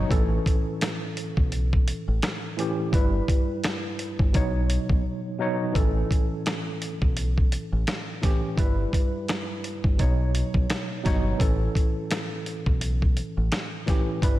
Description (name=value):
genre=hip hop, boom-bap hip-hop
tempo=85 BPM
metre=4/4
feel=swing 58% on 16ths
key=unclear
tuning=A4 = 440 Hz
part: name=tine electric piano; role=accompaniment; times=0.0-14.4 s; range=G2 to C#5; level=-29 LUFS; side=equal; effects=fast stereo tremolo, cassette tape, high-pass filter, low-pass filter
part: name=deep dub fingered electric bass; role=bass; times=0.0-14.4 s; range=G1 to B1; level=-25 LUFS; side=equal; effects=none
part: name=dusty soul sampler-style drum kit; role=drums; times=0.1-14.4 s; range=hi-hat, kick drum, snare drum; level=-24 LUFS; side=equal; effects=none
room=light reverb, digital ambience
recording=none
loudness=-23 LUFS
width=side -15 dB against mid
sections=0.0-5.8 A section; 5.8-14.4 B section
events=break 5.0-5.8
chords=0.1 A; 2.9 Em/G; 4.3 Badd9; 5.8 A; 8.6 Em/G; 10.0 Badd9; 11.4 A